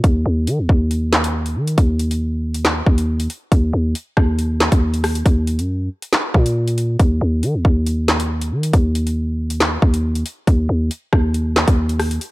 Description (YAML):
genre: hip hop, drill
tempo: 138 BPM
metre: 4/4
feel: half-time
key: Eb minor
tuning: A4 = 442 Hz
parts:
  - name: growling 808-style bass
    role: bass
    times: 0.0-12.2 s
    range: Eb2 to Eb3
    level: -18 LUFS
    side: equal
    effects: none
  - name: drill drum kit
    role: drums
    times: 0.0-12.3 s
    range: handclaps, hi-hat, kick drum, rim click, snare drum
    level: -17 LUFS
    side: equal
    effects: none
room: digital ambience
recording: none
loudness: -16 LUFS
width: side -19 dB against mid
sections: 0.0-12.3 A section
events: none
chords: none